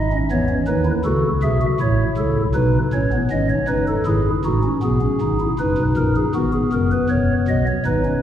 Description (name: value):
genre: classical, baroque-style 3-part fugue for pipe organ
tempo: 79 BPM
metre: 4/4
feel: straight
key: E major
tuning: A4 = 440 Hz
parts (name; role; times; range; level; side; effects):
- pipe organ, stopped flute; solo; 0.0-8.2 s; E1 to E5; -17 LUFS; equal; none
room: wet church reverb, RT60 2.7 s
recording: heard from further back in the room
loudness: -17 LUFS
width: side -10 dB against mid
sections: 0.0-8.2 A section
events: none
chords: 0.0 E/G#; 1.1 F#m7; 2.6 B7; 4.1 E/G#; 5.6 B/F#; 7.1 C#m7/E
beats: 0.30 1.05 1.80 | 2.56 3.31 4.07 4.83 | 5.59 6.35 7.11 7.86